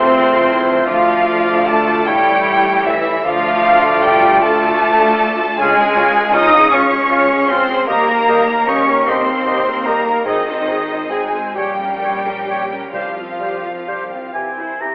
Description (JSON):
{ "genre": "classical, slow romantic movement for symphony orchestra", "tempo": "42-54 BPM (dotted quarters)", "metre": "6/8", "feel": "rubato", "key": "unclear", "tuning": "A4 = 439 Hz", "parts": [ { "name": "rich studio violin section", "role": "melody", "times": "0.0-14.3 s", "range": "Eb5 to Eb6", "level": "-19 LUFS", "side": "equal", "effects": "none" }, { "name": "clear studio violin section", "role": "second line", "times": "0.0-14.3 s", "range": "Eb4 to Eb5", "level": "-24 LUFS", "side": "equal", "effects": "none" }, { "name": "mellow hollow concert flute", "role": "second line", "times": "0.0-14.3 s", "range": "Eb5 to Eb6", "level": "-19 LUFS", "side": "equal", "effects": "none" }, { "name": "warm clarinet", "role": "second line", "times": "0.0-14.9 s", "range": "E4 to Ab4", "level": "-25 LUFS", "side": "equal", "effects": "none" }, { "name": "warm oboe", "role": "second line", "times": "0.0-14.9 s", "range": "C5 to Bb5", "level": "-21 LUFS", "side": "equal", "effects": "none" }, { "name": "rich studio viola section", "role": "accompaniment", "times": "0.0-14.9 s", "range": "G3 to C5", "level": "-24 LUFS", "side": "equal", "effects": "none" }, { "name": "warm bassoon", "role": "accompaniment", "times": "0.0-14.9 s", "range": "E3 to Db4", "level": "-23 LUFS", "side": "equal", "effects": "none" }, { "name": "mellow French horn section", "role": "sustained chords", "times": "0.0-14.3 s", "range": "Eb3 to Eb4", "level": "-20 LUFS", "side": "equal", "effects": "none" }, { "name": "concert harp", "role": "arpeggios", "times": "0.0-14.9 s", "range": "Ab2 to F6", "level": "-29 LUFS", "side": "equal", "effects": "none" }, { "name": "clear studio double bass section", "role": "bass", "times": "0.0-14.9 s", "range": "Ab1 to E2", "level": "-28 LUFS", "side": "equal", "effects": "none" }, { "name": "rich studio cello section", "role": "bass", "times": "0.0-14.3 s", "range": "Eb3 to Eb4", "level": "-22 LUFS", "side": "equal", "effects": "none" }, { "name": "timpani", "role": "percussion", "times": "12.9-14.3 s", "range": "C3", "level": "-42 LUFS", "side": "equal", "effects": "none" } ], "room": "moderate recital hall reverb, RT60 1.4 s", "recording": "telephone sound", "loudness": "-12 LUFS", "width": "side -31 dB against mid", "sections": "0.0-14.9 A section", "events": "none", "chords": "0.0 F; 0.9 Dm; 2.1 A7; 3.2 Dm; 5.6 Db; 7.9 Eb; 10.3 Ab; 11.6 Gdim/Bb; 12.9 Csus4; 14.3 C" }